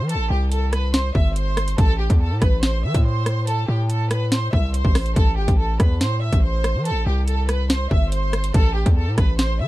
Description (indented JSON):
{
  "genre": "hip hop, drill",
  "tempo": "142 BPM",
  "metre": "4/4",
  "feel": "half-time",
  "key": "A minor",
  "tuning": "A4 = 445 Hz",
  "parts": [
    { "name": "warm studio violin section", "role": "melody", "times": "0.0-9.7 s", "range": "G4 to E6", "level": "-26 LUFS", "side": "right 1 dB", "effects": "ping-pong delay" },
    { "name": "hard-hitting 808-style bass", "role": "bass", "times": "0.0-9.7 s", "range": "G1 to E3", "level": "-21 LUFS", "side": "equal", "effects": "none" },
    { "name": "drill drum kit", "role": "drums", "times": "0.1-9.5 s", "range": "hi-hat, kick drum, rim click, snare drum", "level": "-18 LUFS", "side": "equal", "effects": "overdrive" }
  ],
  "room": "little or no reverb",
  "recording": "dark, warm production",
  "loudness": "-17 LUFS",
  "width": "side -17 dB against mid",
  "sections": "0.0-9.7 A section",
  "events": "none",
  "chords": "0.0 Am7"
}